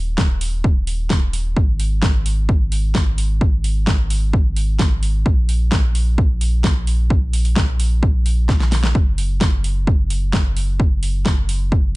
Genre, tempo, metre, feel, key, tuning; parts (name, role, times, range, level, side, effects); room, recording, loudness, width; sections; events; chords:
EDM, festival progressive house; 130 BPM; 4/4; straight; A4 = 440 Hz
saturated sub bass; bass; 0.0-12.0 s; Eb1 to Bb1; -19 LUFS; equal; tube saturation, sidechain pumping
electronic kick drum; drums; 0.2-11.8 s; -16 LUFS; equal; overdrive
pop drum kit; drums; 0.2-11.6 s; hi-hat, snare drum; -24 LUFS; equal
little or no reverb; nothing above 10.5 kHz; -15 LUFS; side -21 dB against mid
0.0-12.0 A section
drum fill 8.5-8.9